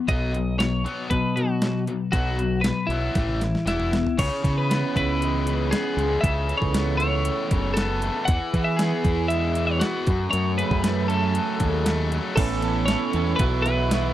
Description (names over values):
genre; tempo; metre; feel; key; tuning
indie rock; 117 BPM; 4/4; straight; unclear; A4 = 443 Hz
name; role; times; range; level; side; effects
overdriven electric guitar; riff; 0.0-14.1 s; F#2 to E4; -28 LUFS; left 4 dB; none
twelve-string electric guitar; riff; 0.0-14.1 s; E3 to A4; -29 LUFS; right 10 dB; lush chorus
twelve-string electric guitar; melody; 0.1-14.1 s; E4 to F#5; -27 LUFS; left 1 dB; none
growling fingered electric bass; bass; 0.1-14.1 s; E1 to E3; -25 LUFS; equal; overdrive
detuned 8-bit digital drum machine; drums; 0.1-14.0 s; crash cymbal, hi-hat, kick drum, snare drum, toms; -25 LUFS; equal; overdrive
room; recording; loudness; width
little or no reverb; dry, close 1970s-style studio recording; -21 LUFS; side -13 dB against mid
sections
0.0-4.2 A section; 4.2-12.4 B section; 12.4-14.1 C section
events
drum fill 3.2-4.2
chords
0.1 B; 3.2 A5; 3.7 E5; 4.2 C#m7; 6.2 Aadd9/C#; 8.3 E; 10.1 F#m; 12.4 Aadd9; 13.4 Bsus4